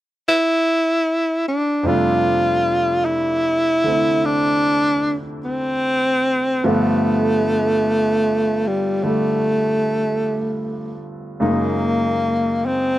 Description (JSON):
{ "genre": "jazz ballad", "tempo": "50 BPM", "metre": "4/4", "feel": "swing 68% on 8ths", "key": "F major", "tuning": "A4 = 438 Hz", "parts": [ { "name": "warm tenor saxophone", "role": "melody", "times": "0.3-13.0 s", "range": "G3 to F4", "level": "-18 LUFS", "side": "equal", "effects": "none" }, { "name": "clear grand piano", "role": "accompaniment", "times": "1.8-13.0 s", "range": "F2 to E4", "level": "-22 LUFS", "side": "right 1 dB", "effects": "none" } ], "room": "little or no reverb", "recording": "dry, close 1970s-style studio recording", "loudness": "-16 LUFS", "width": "side -14 dB against mid", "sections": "0.0-1.8 A section; 1.8-13.0 B section", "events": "none", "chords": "0.0 N.C.; 1.8 F69; 6.6 G9; 11.4 Gb6" }